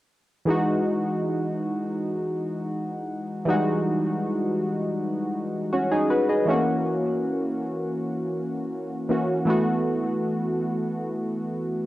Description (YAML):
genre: R&B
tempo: 80 BPM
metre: 4/4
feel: straight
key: E major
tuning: A4 = 437 Hz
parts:
  - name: warm analog keys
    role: solo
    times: 0.5-11.9 s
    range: E3 to D#5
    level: -23 LUFS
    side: equal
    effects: chorus, cassette tape, analog delay
room: moderate spring reverb, RT60 1.3 s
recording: home recording on cassette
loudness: -23 LUFS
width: side -16 dB against mid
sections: 0.5-11.9 A section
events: none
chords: 0.5 Emaj9; 6.5 F#7; 9.5 B7sus4